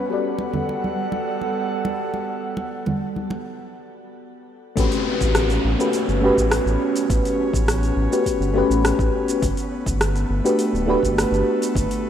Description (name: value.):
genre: sunset chillout.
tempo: 103 BPM.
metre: 4/4.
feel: straight.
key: unclear.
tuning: A4 = 441 Hz.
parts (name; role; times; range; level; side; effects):
mellow FM electric piano; accompaniment; 0.0-12.1 s; A3 to D5; -22 LUFS; moving between left 6 dB and right 3 dB; chorus, auto-pan, tape echo, shimmer reverb.
airy breathy pad; sustained chords; 0.0-12.1 s; G3 to F#5; -26 LUFS; right 2 dB; chorus, vintage 12-bit sampler grit, shimmer reverb.
congas; percussion; 0.4-3.4 s; none; -28 LUFS; right 2 dB; none.
round analog bass; bass; 4.8-11.9 s; D1 to A1; -22 LUFS; equal; none.
deep house drum kit; drums; 4.8-12.0 s; hi-hat, rim click, shaker; -26 LUFS; equal; overdrive, low-pass filter on hats, small room ambience, low-pass filter on perc, low-pass filter on snare.
electronic kick drum; drums; 4.8-11.9 s; none; -27 LUFS; equal; overdrive, small room ambience.
downlifter; sound effects; 4.8-9.4 s; none; -30 LUFS; left 1 dB; none.
room: moderate lush hall reverb, RT60 2.3 s.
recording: rough home demo mix.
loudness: -19 LUFS.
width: side -9 dB against mid.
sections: 0.0-4.8 A section; 4.8-12.1 B section.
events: break 3.6-4.8.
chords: 0.1 Gmaj9; 4.8 A13; 9.4 Gmaj9.